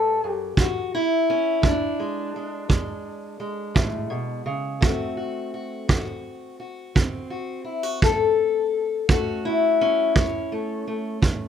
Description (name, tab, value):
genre	acoustic country blues, solo or duo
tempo	56 BPM (dotted quarters)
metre	12/8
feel	straight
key	unclear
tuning	A4 = 440 Hz
part	fingerpicked steel-string acoustic guitar	melody	0.0-11.5 s	E2 to C#5	-23 LUFS	left 3 dB	none
part	kick drum	drums	0.6-11.4 s	none	-20 LUFS	right 2 dB	none
room	light reverb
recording	none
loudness	-21 LUFS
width	side -8 dB against mid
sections	0.0-11.5 A section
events	none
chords	0.0 A7; 0.6 E7; 4.8 D7; 9.1 A